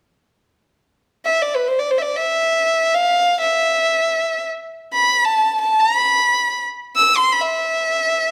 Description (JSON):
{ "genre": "arabic", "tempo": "free time", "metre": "none", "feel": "none", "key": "E maqam hijaz", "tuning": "A4 = 439 Hz", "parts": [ { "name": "dark violin", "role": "melody", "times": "1.3-8.3 s", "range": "B4 to E6", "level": "-18 LUFS", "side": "equal", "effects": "none" } ], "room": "moderate recital hall reverb, RT60 1.4 s", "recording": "none", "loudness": "-18 LUFS", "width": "mono", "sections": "1.0-8.3 A section", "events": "none", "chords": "none" }